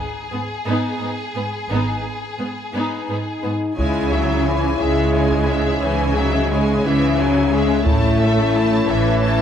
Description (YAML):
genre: cinematic, epic orchestral film score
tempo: 59 BPM (dotted quarters)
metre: 6/8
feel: straight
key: C# minor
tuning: A4 = 444 Hz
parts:
  - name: clear symphonic violin section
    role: melody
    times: 0.0-9.4 s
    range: G#4 to A5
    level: -28 LUFS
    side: left 3 dB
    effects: none
  - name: warm symphonic violin section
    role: second line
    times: 0.3-9.4 s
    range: B3 to E5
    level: -27 LUFS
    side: left 3 dB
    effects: none
  - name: clear symphonic viola section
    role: accompaniment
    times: 0.3-9.4 s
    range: E3 to B3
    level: -24 LUFS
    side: right 1 dB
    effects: none
  - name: rich symphonic cello section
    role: bass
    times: 0.3-9.4 s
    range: G#2 to C#3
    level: -25 LUFS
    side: right 2 dB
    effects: none
  - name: rich symphonic double bass section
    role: bass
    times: 1.7-9.4 s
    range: G#1 to C#2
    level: -23 LUFS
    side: right 2 dB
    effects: none
  - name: dark French horn section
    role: sustained chords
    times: 2.7-9.4 s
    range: G#3 to E4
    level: -22 LUFS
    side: left 7 dB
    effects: none
  - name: bright trombone section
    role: sustained chords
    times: 3.8-9.4 s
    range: G#2 to C#4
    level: -26 LUFS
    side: right 4 dB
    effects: none
  - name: taiko ensemble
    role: drums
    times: 3.8-9.2 s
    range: none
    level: -24 LUFS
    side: equal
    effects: none
room: moderate scoring stage reverb, RT60 1.9 s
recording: none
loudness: -17 LUFS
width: side -8 dB against mid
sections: 0.0-3.8 A section; 3.8-9.4 B section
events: build-up 0.0-3.8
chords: 0.0 G#m; 3.8 C#m; 7.9 A